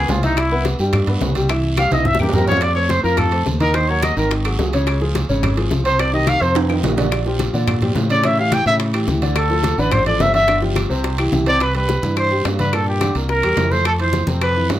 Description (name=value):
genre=Afro-Cuban jazz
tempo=214 BPM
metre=4/4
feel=straight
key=C major from 11.6 s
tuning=A4 = 440 Hz
part: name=mellow trumpet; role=melody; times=0.0-14.7 s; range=Eb4 to G5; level=-18 LUFS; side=equal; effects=none
part: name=warm grand piano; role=accompaniment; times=0.0-14.8 s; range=Bb2 to F6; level=-22 LUFS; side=equal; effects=none
part: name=fingered electric bass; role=bass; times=0.0-14.8 s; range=G1 to Bb2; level=-20 LUFS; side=equal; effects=none
part: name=bongos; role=percussion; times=0.1-14.8 s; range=none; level=-27 LUFS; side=left 5 dB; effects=none
part: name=congas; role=percussion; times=0.1-14.8 s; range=none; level=-25 LUFS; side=left 1 dB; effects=none
part: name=guiro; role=percussion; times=0.1-14.8 s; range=none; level=-33 LUFS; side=right 5 dB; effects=none
part: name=timbales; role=percussion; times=0.1-14.8 s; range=none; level=-28 LUFS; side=right 6 dB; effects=none
part: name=claves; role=percussion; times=0.4-14.6 s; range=none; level=-30 LUFS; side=left 6 dB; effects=none
room=moderate club reverb, RT60 0.7 s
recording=none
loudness=-15 LUFS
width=side -13 dB against mid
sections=0.0-2.6 A section; 2.6-11.6 A section; 11.6-14.8 B section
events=trumpet solo 0.0-11.6; drum fill 1.8-2.6, 6.6-7.1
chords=0.4 Cmaj7; 2.1 C7; 2.6 F; 3.7 Ebm; 4.3 Ab5; 4.9 Dbmaj7; 6.0 Cm; 6.6 F5; 7.1 Bb6; 8.2 A7; 9.4 Dm; 10.5 G5; 11.0 C; 11.6 Cmaj7; 12.7 Gm; 13.3 C7; 13.9 Fmaj7